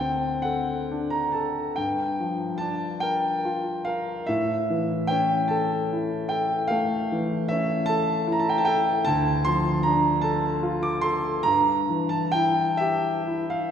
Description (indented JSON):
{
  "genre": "classical, romantic nocturne for solo piano",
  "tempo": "41-52 BPM (dotted quarters)",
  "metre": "12/8",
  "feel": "rubato",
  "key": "D minor",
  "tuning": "A4 = 441 Hz",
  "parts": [
    { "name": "warm concert grand piano", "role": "solo", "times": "0.0-13.7 s", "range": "D2 to D6", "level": "-22 LUFS", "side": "equal", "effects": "none" }
  ],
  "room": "wet concert hall reverb, RT60 2.2 s",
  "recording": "recorded in a church or concert hall",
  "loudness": "-22 LUFS",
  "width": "side -8 dB against mid",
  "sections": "0.0-13.7 A section",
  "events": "none",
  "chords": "0.0 D5; 1.8 Gm7; 4.3 A; 9.0 Dm; 11.5 Gm69",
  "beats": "0.46 1.77 3.02 | 4.28 5.50 6.70 7.87 | 9.05 10.23 11.45 12.80"
}